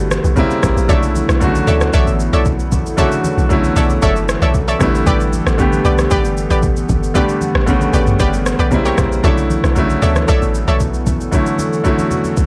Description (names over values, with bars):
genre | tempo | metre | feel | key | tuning
amapiano | 115 BPM | 4/4 | straight | B minor | A4 = 440 Hz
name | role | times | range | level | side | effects
clear baby grand piano | accompaniment | 0.0-12.5 s | C#3 to G4 | -20 LUFS | equal | none
hollow soft pad | sustained chords | 0.0-12.5 s | C#3 to F#5 | -26 LUFS | equal | chorus, sidechain pumping
deep log drum bass | bass | 0.0-11.3 s | F#1 to D2 | -20 LUFS | equal | none
smooth R&B drum kit | drums | 0.1-12.5 s | kick drum, rim click, shaker, toms | -21 LUFS | equal | none
congas | percussion | 0.1-12.4 s | none | -27 LUFS | equal | none
analog pluck | stabs | 0.9-10.8 s | G4 to E5 | -23 LUFS | equal | chorus, analog delay
room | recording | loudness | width
digital ambience | dry, gritty hardware recording, cassette tape | -15 LUFS | mono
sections
0.0-12.5 A section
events
none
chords
0.4 A#dim7; 0.9 Bm11; 4.8 A9sus4; 8.7 A#dim7; 9.2 Bm11